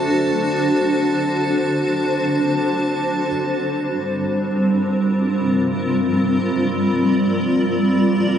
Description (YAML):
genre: ambient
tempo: free time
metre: none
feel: none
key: G minor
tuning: A4 = 440 Hz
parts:
  - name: granular cloud pad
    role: sustained chords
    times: 0.0-8.4 s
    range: G3 to D5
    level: -17 LUFS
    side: equal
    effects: built-in reverb
  - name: felt-muted upright piano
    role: arpeggios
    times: 0.0-3.3 s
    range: A3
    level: -38 LUFS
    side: left 1 dB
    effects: none
  - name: drifting glass-harmonics texture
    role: texture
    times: 0.0-3.3 s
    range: A5 to A6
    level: -28 LUFS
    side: right 1 dB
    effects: chorus, built-in reverb
room: wet huge ambient reverb, RT60 9.1 s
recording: dark, warm production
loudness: -17 LUFS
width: side -9 dB against mid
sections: 0.0-3.3 A section; 3.3-8.4 B section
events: none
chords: 0.0 D7; 3.3 Gm